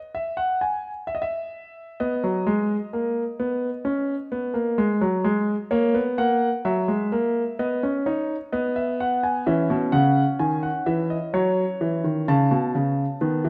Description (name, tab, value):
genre	classical, baroque-style 3-part fugue for grand piano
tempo	64 BPM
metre	4/4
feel	straight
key	unclear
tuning	A4 = 442 Hz
part	warm grand piano	solo	0.1-13.5 s	B2 to A5	-24 LUFS	equal	none
room	wet stone room reverb, RT60 1.5 s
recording	none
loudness	-24 LUFS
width	mono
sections	0.0-13.5 A section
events	none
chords	0.0 N.C.; 2.0 B; 3.9 C#5; 5.7 F#7/A#; 7.6 B; 11.3 F#m7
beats	0.15 1.08 | 2.01 2.94 3.86 4.79 | 5.72 6.66 7.59 8.53 | 9.46 10.40 11.34 12.28 | 13.21